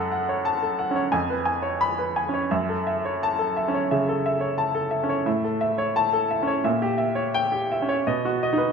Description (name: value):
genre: classical, romantic character piece for solo piano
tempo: 87 BPM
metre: 4/4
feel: rubato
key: unclear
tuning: A4 = 440 Hz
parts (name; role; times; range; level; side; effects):
- bright baby grand piano; solo; 0.0-8.7 s; E#2 to B5; -22 LUFS; equal; none
room: wet recital hall reverb, RT60 1.5 s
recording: none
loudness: -22 LUFS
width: side -6 dB against mid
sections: 0.0-8.7 A section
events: none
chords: 0.0 F#m; 1.1 C#7/E#; 2.5 F#m7; 5.3 A; 6.6 A#dim7; 8.0 B